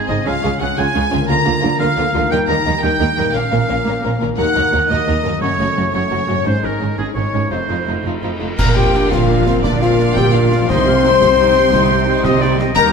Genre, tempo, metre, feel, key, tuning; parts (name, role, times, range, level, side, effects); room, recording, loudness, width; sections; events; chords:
cinematic, heroic adventure film score; 116 BPM (dotted quarters); 12/8; straight; Bb major from 8.6 s; A4 = 441 Hz
warm symphonic violin section; melody; 0.0-12.8 s; Ab4 to C6; -25 LUFS; left 1 dB
clear oboe; second line; 0.0-12.9 s; Ab4 to Bb5; -21 LUFS; right 2 dB
warm French horn section; sustained chords; 0.0-12.9 s; Ab3 to C5; -20 LUFS; left 6 dB
concert harp; arpeggios; 0.0-12.9 s; F2 to C6; -23 LUFS; left 6 dB
warm symphonic violin section; second line; 0.1-12.9 s; Db4 to C6; -24 LUFS; left 3 dB
warm symphonic viola section; accompaniment; 0.1-12.9 s; Eb3 to G4; -23 LUFS; right 2 dB
rich symphonic double bass section; bass; 0.1-12.9 s; F1 to Eb2; -21 LUFS; right 4 dB
warm symphonic cello section; bass; 0.1-12.9 s; Eb2 to Eb3; -23 LUFS; right 4 dB
cymbal swell, clash cymbals and concert bass drum; percussion; 4.4-9.2 s; -23 LUFS; equal
concert flute; second line; 8.6-12.9 s; D5 to C6; -26 LUFS; left 4 dB
mellow clarinet; second line; 8.6-12.9 s; D4 to C5; -25 LUFS; left 2 dB
concert snare drum, clash cymbals and concert bass drum; drums; 8.6-12.9 s; -24 LUFS; equal
moderate scoring stage reverb, RT60 1.9 s; -13 LUFS; side -6 dB against mid
0.0-8.6 A section; 8.6-12.9 B section
band accent 8.6-8.9
0.3 Db; 1.3 Bb/D; 2.3 Eb; 3.3 Bbm; 4.4 Ebm; 5.4 Gbm; 6.5 Absus4; 7.5 F7; 8.6 Bbadd9; 10.7 Cm